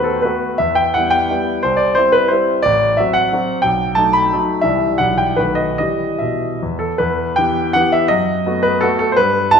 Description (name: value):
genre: classical, romantic triple-time dance for piano with dotted rhythms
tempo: 141-192 BPM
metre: 3/4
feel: rubato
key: E minor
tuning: A4 = 440 Hz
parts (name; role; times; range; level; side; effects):
- warm grand piano; solo; 0.0-9.6 s; A1 to B5; -14 LUFS; equal; none
room: moderate concert hall reverb, RT60 2.2 s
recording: minimal, uncompressed stereo recording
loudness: -14 LUFS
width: side -6 dB against mid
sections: 0.0-7.0 A section; 7.0-9.6 B section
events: none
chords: 0.0 B7/D#; 0.6 Em; 1.6 C; 2.6 F#dim/A; 3.6 B7; 4.7 C; 5.0 Em/B; 5.4 B7; 5.8 Em; 8.1 B7/F#